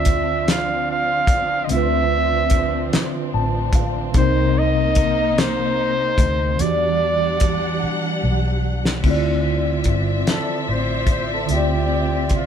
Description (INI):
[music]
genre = slow six-eight R&B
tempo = 49 BPM (dotted quarters)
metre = 6/8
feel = straight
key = D dorian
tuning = A4 = 440 Hz
[part]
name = warm flugelhorn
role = melody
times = 0.0-12.5 s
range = F4 to F5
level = -22 LUFS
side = right 1 dB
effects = none
[part]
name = mellow tine electric piano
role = accompaniment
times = 0.0-12.5 s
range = C3 to A5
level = -23 LUFS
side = right 1 dB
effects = medium stereo tremolo
[part]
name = warm studio string section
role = sustained chords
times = 0.0-12.5 s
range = E3 to F#5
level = -27 LUFS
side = equal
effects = none
[part]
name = vintage muted fingered electric bass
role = bass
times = 0.0-12.5 s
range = G1 to E2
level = -23 LUFS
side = equal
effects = none
[part]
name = cloth-damped thuddy drum kit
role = drums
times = 0.1-12.5 s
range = crash cymbal, hi-hat, kick drum, snare drum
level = -20 LUFS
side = left 1 dB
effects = none
[sound]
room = moderate studio reverb, RT60 0.8 s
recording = band playing live in one room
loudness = -17 LUFS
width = side -8 dB against mid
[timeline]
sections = 0.0-9.0 A section; 9.0-12.5 B section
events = tine electric piano fill 2.9-4.1; drum fill 7.8-9.0; flugelhorn solo 9.0-12.5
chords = 0.0 Dm9; 4.1 Cm9; 6.6 Em9; 9.0 Dm9